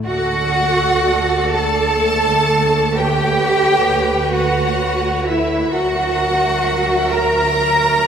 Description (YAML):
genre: classical, slow romantic movement for string orchestra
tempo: 43 BPM (dotted quarters)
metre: 12/8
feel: rubato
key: D major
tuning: A4 = 440 Hz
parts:
  - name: rich studio violin section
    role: melody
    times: 0.1-8.1 s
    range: C#5 to E5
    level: -30 LUFS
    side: left 4 dB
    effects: none
  - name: clear studio violin section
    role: second line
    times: 0.1-8.1 s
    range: E5 to A#5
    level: -20 LUFS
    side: equal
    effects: none
  - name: warm studio viola section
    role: accompaniment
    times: 0.1-8.1 s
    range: F#3 to B4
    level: -22 LUFS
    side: right 3 dB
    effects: none
  - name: rich studio cello section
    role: bass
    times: 0.1-8.1 s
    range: E4 to A#4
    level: -17 LUFS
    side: right 1 dB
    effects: none
  - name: rich studio double bass section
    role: bass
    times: 0.1-8.1 s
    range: D2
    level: -24 LUFS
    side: right 4 dB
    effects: none
room: moderate scoring stage reverb, RT60 1.9 s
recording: minimal, uncompressed stereo recording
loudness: -14 LUFS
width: side -8 dB against mid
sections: 0.1-8.1 A section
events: none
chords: 0.1 D; 3.0 A9/D; 5.7 F#7/D